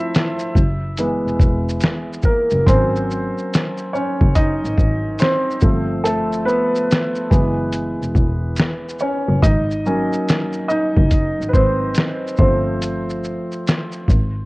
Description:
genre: lo-fi hip hop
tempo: 71 BPM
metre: 4/4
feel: swing 64% on 16ths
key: unclear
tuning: A4 = 442 Hz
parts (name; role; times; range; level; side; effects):
- felt-muted upright piano; accompaniment; 0.0-14.5 s; Fb3 to Fb5; -20 LUFS; equal; cassette tape, low-pass filter
- lo-fi sampler-style drum kit; drums; 0.1-14.3 s; hi-hat, kick drum, shaker, snare drum; -17 LUFS; equal; none
- rich double bass; bass; 0.6-14.5 s; Fb1 to Ab1; -21 LUFS; equal; none
room: light reverb, small room ambience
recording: worn, warbling old tape, cassette tape, warbly pitch drift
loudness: -16 LUFS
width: side -22 dB against mid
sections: 0.0-14.5 A section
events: felt piano solo 0.0-14.5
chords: 0.0 G9sus4 (rootless); 0.6 Gb9sus4; 2.7 Ab9sus4; 5.6 G9sus4; 7.3 Gb9sus4; 9.4 Ab9sus4; 12.4 G9sus4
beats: 0.13 0.98 1.82 | 2.67 3.51 4.36 5.20 | 6.05 6.89 7.74 8.58 | 9.43 10.27 11.12 11.96 | 12.81 13.65

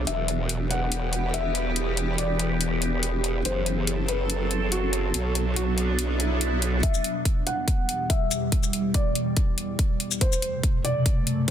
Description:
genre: heavy wobble dubstep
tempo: 142 BPM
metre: 4/4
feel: half-time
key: E minor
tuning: A4 = 440 Hz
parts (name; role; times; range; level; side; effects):
- evolving wavetable pad; sustained chords; 0.0-11.5 s; E2 to A4; -28 LUFS; right 1 dB; ensemble chorus, built-in reverb, phaser, sidechain pumping
- formant-sweep wobble bass; bass; 0.0-6.8 s; E1 to B1; -26 LUFS; equal; chorus, overdrive
- felt-muted upright piano; melody; 0.1-11.5 s; F#4 to F#5; -31 LUFS; left 2 dB; low-pass filter, tape echo
- electronic hi-hat and shaker; drums; 0.1-11.5 s; none; -28 LUFS; left 3 dB; none
- swell; sound effects; 6.1-6.8 s; none; -33 LUFS; right 3 dB; none
- electronic kick drum; drums; 6.8-11.5 s; none; -23 LUFS; equal; none
room: light reverb, digital ambience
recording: dense, heavily limited modern master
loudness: -23 LUFS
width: side -10 dB against mid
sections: 0.0-6.8 A section; 6.8-11.5 B section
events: swell 6.1-6.8; build-up 6.8-11.5; filter sweep on ambient pad 6.8-11.5; filter sweep on felt piano 6.8-11.5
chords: 0.1 Em; 3.5 F#dim; 5.1 Bm; 6.8 Em; 10.2 F#dim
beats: | 0.07 0.49 0.92 1.34 | 1.76 2.18 2.61 3.03 | 3.45 3.87 4.30 4.72 | 5.14 5.56 5.99 6.41 | 6.83 7.25 7.68 8.10 | 8.52 8.94 9.37 9.79 | 10.21 10.63 11.06 11.48

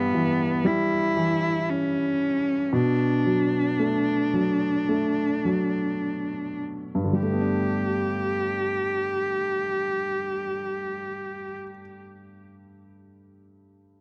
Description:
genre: pop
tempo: 50-59 BPM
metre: 4/4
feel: straight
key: G lydian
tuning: A4 = 439 Hz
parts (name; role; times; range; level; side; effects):
- warm cello; melody; 0.0-11.6 s; B3 to G4; -28 LUFS; equal; none
- warm baby grand piano; accompaniment; 0.0-14.0 s; G2 to D4; -29 LUFS; equal; none
room: light reverb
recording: dry, close 1970s-style studio recording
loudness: -25 LUFS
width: mono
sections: 0.0-7.2 A section; 7.2-11.9 B section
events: slowing down 0.0-7.2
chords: 0.0 Em/G; 2.7 Bm7; 7.2 Gadd9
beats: 0.65 1.67 | 2.72 3.78 4.88 6.01 | 7.17 8.36 9.55 10.73

